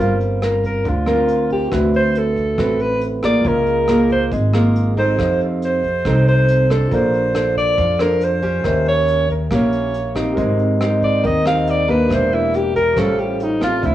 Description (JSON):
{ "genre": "bossa nova", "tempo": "139 BPM", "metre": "4/4", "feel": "straight", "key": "unclear", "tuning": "A4 = 441 Hz", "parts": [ { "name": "breathy alto saxophone", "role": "melody", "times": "0.0-13.9 s", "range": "Eb4 to F5", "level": "-19 LUFS", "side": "equal", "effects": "cassette tape, plate reverb" }, { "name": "barky tine electric piano", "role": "accompaniment", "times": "0.0-13.9 s", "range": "F4 to F5", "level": "-27 LUFS", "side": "right 5 dB", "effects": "cassette tape, plate reverb" }, { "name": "nylon-string guitar", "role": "accompaniment", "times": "0.0-13.9 s", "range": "A2 to C5", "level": "-19 LUFS", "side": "equal", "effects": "cassette tape, plate reverb" }, { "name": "upright bass", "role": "bass", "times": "0.0-13.9 s", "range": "E1 to F2", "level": "-21 LUFS", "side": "right 1 dB", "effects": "none" }, { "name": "vintage brush drum kit", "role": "drums", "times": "0.2-13.9 s", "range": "hi-hat, kick drum, rim click", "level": "-29 LUFS", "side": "equal", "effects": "none" } ], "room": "light reverb", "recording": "home recording on cassette, small room ambience", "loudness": "-15 LUFS", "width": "side -13 dB against mid", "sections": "0.0-13.9 A section", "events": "alto saxophone solo 0.0-13.9", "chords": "0.0 Gm7; 1.7 D13; 3.5 Db6; 5.2 F7; 6.9 Bbmaj9; 8.6 Eb7b9; 10.4 Abmaj7; 12.1 Em7b5; 13.0 A7alt" }